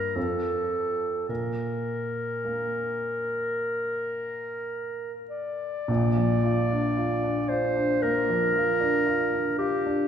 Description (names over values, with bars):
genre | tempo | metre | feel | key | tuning
classical, romantic duo for clarinet and grand piano | 51-58 BPM | 4/4 | rubato | Bb major | A4 = 440 Hz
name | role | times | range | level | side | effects
mellow clarinet | melody | 0.0-10.1 s | G4 to D5 | -27 LUFS | equal | none
warm baby grand piano | accompaniment | 0.0-10.1 s | Bb1 to F4 | -27 LUFS | equal | none
room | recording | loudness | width
wet scoring stage reverb, RT60 2.0 s | heard from further back in the room | -24 LUFS | side -8 dB against mid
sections
0.0-5.9 A section; 5.9-10.1 B section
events
none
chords
0.2 F; 1.3 N.C.; 5.9 Bb